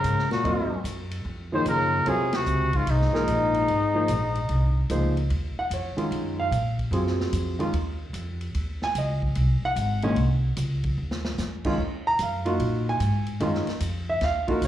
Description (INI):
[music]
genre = modal jazz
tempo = 148 BPM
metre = 4/4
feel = swing 66% on 8ths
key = Eb dorian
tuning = A4 = 436 Hz
[part]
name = mellow trumpet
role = melody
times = 0.0-4.9 s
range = Eb4 to C5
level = -25 LUFS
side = left 1 dB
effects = slapback echo
[part]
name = dark trombone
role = second line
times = 0.0-4.9 s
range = Ab2 to Eb3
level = -30 LUFS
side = left 4 dB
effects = slapback echo
[part]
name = upright bass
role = bass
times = 0.0-14.7 s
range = Ab1 to Bb2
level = -26 LUFS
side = equal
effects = none
[part]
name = vintage drum kit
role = drums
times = 0.0-14.7 s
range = crash cymbal, hi-hat, kick drum, ride cymbal, snare drum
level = -36 LUFS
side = equal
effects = none
[part]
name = warm grand piano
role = accompaniment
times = 0.4-14.7 s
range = Bb2 to Bb5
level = -27 LUFS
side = right 1 dB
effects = slapback echo
[sound]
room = light reverb, small room ambience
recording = live gig heard through the venue's PA, club reverb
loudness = -23 LUFS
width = side -12 dB against mid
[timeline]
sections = 0.0-5.3 A section; 5.3-14.7 B section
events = band accent 2.3; drum fill 11.0-11.4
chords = 0.0 Ebm11; 2.1 Ab; 5.3 Ebm11; 8.5 Ab; 11.8 Ebmadd9